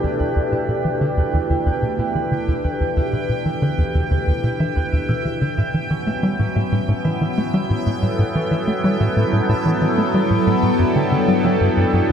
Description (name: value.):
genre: ambient, sequencer-driven space music.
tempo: 92 BPM.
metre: 4/4.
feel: straight.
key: E dorian.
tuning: A4 = 445 Hz.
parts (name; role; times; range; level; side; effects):
phased analog pad; sustained chords; 0.0-12.1 s; G2 to A4; -21 LUFS; equal; phaser, chorus.
concert harp; arpeggios; 0.0-12.1 s; C#4 to E6; -28 LUFS; left 2 dB; auto-pan, analog delay.
tight sequencer bass; riff; 0.0-12.1 s; E2 to A3; -20 LUFS; equal; analog delay.
bubbling stepped-filter texture; texture; 0.0-12.1 s; G5; -29 LUFS; right 5 dB; chorus, built-in reverb.
room: wet huge ambient reverb, RT60 7.9 s.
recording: dreamy mix soaked in reverb.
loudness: -17 LUFS.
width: side -8 dB against mid.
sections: 0.0-12.1 A section.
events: filter sweep on analog synth bass 0.0-12.1.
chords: 0.0 Em; 5.6 A; 10.8 G.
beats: | 0.36 1.01 1.67 2.32 | 2.97 3.62 4.27 4.93 | 5.58 6.23 6.88 7.54 | 8.19 8.84 9.49 10.14 | 10.79 11.45 12.10.